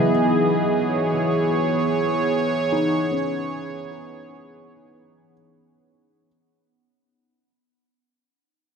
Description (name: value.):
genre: ambient.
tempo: 76 BPM.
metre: 4/4.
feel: straight.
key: unclear.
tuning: A4 = 440 Hz.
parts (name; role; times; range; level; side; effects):
warm analog pad; sustained chords; 0.0-6.3 s; E3 to D#5; -20 LUFS; right 1 dB; chorus.
felt-muted upright piano; arpeggios; 0.0-6.3 s; E3 to D#4; -27 LUFS; left 2 dB; analog chorus, analog delay.
organ-like drone; drone; 0.0-6.3 s; B3; -33 LUFS; left 1 dB; none.
room: wet plate reverb, RT60 2.4 s.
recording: dreamy mix soaked in reverb.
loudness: -19 LUFS.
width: side -6 dB against mid.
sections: 0.0-6.3 A section.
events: fade-out 0.0-6.3.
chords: 0.0 Emaj7.